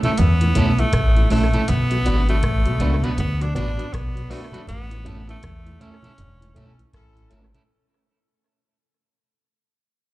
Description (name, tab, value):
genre	roots reggae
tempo	80 BPM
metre	4/4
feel	swing 62% on 16ths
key	unclear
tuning	A4 = 440 Hz
part	edgy tenor saxophone	melody	0.0-6.9 s	A3 to D4	-26 LUFS	equal	tape echo, slapback echo
part	electric guitar at the edge of break-up	accompaniment	0.0-7.6 s	A3 to B4	-28 LUFS	right 4 dB	tube saturation, harmonic tremolo, tape echo, slapback echo
part	mellow tonewheel organ	accompaniment	0.0-7.4 s	A2 to F#4	-29 LUFS	left 1 dB	overdrive, chorus vibrato, stopped rotary speaker, slapback echo
part	booming analog drum machine	drums	0.0-7.7 s	hi-hat, kick drum, rim click	-23 LUFS	equal	tape echo
part	congas	percussion	0.0-7.7 s	none	-26 LUFS	right 2 dB	none
part	deep dub fingered electric bass	bass	0.2-7.5 s	E1 to E2	-20 LUFS	equal	none
part	warm horn section	second line	6.6-7.5 s	C#4 to A4	-63 LUFS	left 2 dB	tape echo, slapback echo
room	small room ambience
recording	live gig heard through the venue's PA, club reverb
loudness	-17 LUFS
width	side -17 dB against mid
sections	0.0-7.7 A section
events	fade-out 0.0-7.7; band accent 4.7-7.7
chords	0.0 A; 1.7 Bm; 4.7 A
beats	0.18 0.93 | 1.68 2.43 3.18 3.93 | 4.68 5.43 6.18 6.93